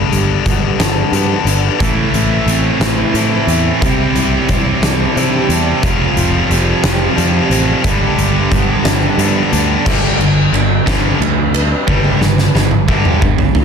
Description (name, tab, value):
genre	quiet-loud alternative rock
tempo	60 BPM (dotted quarters)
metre	6/8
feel	straight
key	unclear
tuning	A4 = 440 Hz
part	electric guitar through a small old amp	arpeggios	0.0-9.9 s	G2 to E4	-21 LUFS	right 2 dB	ensemble chorus
part	overdriven electric guitar	riff	0.0-13.5 s	G2 to F4	-18 LUFS	left 12 dB	none
part	picked electric bass	bass	0.1-13.6 s	F1 to C3	-17 LUFS	equal	none
part	oversized low-tuned drum kit	drums	0.1-13.6 s	crash cymbal, hi-hat, kick drum, ride cymbal, snare drum, toms	-16 LUFS	equal	none
part	scooped high-gain guitar	riff	1.8-13.5 s	F2 to C4	-18 LUFS	right 12 dB	distortion
part	dark symphonic string section	sustained chords	9.8-13.6 s	G3 to B4	-26 LUFS	left 2 dB	none
room	studio ambience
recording	dense, heavily limited modern master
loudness	-11 LUFS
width	side -6 dB against mid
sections	0.0-9.9 A section; 9.9-13.6 B section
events	drum fill 11.9-13.6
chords	0.0 G; 1.8 Am; 3.8 Cadd9; 5.8 Fsus2; 7.9 G